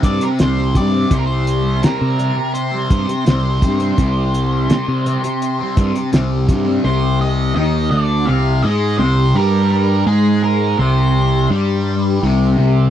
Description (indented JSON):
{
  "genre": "psychedelic rock",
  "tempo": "84 BPM",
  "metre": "4/4",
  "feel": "straight",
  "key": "C minor",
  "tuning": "A4 = 440 Hz",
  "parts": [
    { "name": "octave-fuzz lead guitar", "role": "melody", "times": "0.0-11.5 s", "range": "Ab4 to F5", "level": "-23 LUFS", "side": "right 2 dB", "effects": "distortion, tape echo" },
    { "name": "fuzz guitar", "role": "riff", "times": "0.0-12.9 s", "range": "C3 to C4", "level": "-18 LUFS", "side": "left 1 dB", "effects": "distortion, phaser" },
    { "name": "fuzz picked electric bass", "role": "bass", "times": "0.0-12.9 s", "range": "C2 to C3", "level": "-16 LUFS", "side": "equal", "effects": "overdrive" },
    { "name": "cloth-damped thuddy drum kit", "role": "drums", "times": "0.0-6.7 s", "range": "hi-hat, kick drum, snare drum", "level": "-16 LUFS", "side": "equal", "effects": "none" }
  ],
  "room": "little or no reverb",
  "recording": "dry, close 1970s-style studio recording",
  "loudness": "-14 LUFS",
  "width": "side -10 dB against mid",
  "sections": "0.0-6.8 A section; 6.8-12.9 B section",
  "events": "none",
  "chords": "0.0 C5"
}